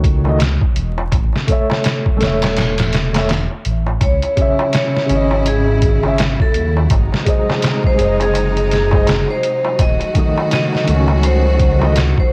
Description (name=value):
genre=trip hop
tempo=83 BPM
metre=4/4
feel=swing 60% on 16ths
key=C# harmonic minor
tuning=A4 = 440 Hz
part: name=felt-muted upright piano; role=accompaniment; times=0.0-11.9 s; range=C#3 to E5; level=-22 LUFS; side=equal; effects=tremolo, vintage 12-bit sampler grit
part: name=dark detuned saw bass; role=bass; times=0.0-12.1 s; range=D#1 to D#2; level=-20 LUFS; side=equal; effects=none
part: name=trip hop sampler-style drum kit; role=drums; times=0.0-12.3 s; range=hi-hat, kick drum, snare drum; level=-19 LUFS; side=equal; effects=none
part: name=darbuka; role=percussion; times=0.3-12.3 s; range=none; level=-30 LUFS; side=equal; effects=none
part: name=vibraphone with medium hard mallets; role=melody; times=4.0-12.3 s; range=G#4 to D#5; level=-22 LUFS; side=equal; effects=none
part: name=clear symphonic string section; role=sustained chords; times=4.0-12.3 s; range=B#2 to F#4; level=-28 LUFS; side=equal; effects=none
part: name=flickering grainy texture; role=texture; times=4.5-12.3 s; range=F#3 to F#4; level=-32 LUFS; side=equal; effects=none
room=light reverb, studio ambience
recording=worn, warbling old tape, cassette tape, vinyl crackle, warbly pitch drift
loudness=-15 LUFS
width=mono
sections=0.0-4.0 A section; 4.0-12.3 B section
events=none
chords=0.0 D#dim; 1.1 A; 4.0 C#m; 6.9 G#; 9.8 D#dim